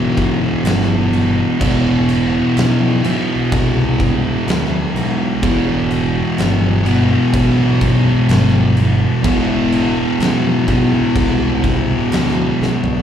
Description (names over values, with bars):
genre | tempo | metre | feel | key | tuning
stoner and doom metal | 63 BPM | 4/4 | straight | E minor | A4 = 440 Hz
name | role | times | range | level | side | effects
fuzz guitar | riff | 0.0-13.0 s | E2 to E3 | -18 LUFS | right 7 dB | distortion
thick fuzz guitar | riff | 0.0-13.0 s | E2 to E3 | -18 LUFS | left 7 dB | distortion
growling picked electric bass | bass | 0.0-13.0 s | E1 to D2 | -20 LUFS | equal | overdrive
oversized low-tuned drum kit | drums | 0.2-13.0 s | crash cymbal, kick drum, snare drum, toms | -21 LUFS | equal | none
room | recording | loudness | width
small room ambience | live gig heard through the venue's PA, club reverb | -13 LUFS | side -9 dB against mid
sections
0.0-13.0 A section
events
drum fill 12.6-13.0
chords
0.0 Em